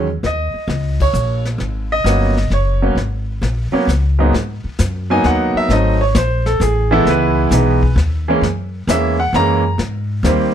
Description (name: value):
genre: jazz piano trio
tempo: 132 BPM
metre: 3/4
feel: swing 68% on 8ths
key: G# minor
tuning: A4 = 440 Hz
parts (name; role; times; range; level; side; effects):
- clear baby grand piano; melody; 0.0-10.5 s; G#2 to A#5; -16 LUFS; right 2 dB; none
- upright bass; bass; 0.0-10.5 s; F#1 to G#2; -17 LUFS; left 1 dB; none
- vintage brush drum kit; drums; 0.2-10.5 s; brushed snare drum, hi-hat, kick drum, ride cymbal, snare drum; -24 LUFS; left 3 dB; none
room: light reverb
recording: close, detailed microphones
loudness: -14 LUFS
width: side -9 dB against mid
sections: 0.0-4.3 A section; 4.3-10.5 B section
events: band accent 0.9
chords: 0.2 D#5; 1.6 G#m11; 4.3 G#m9; 5.7 G#7b9; 7.1 C#m9; 8.4 F#9; 9.8 G#maj9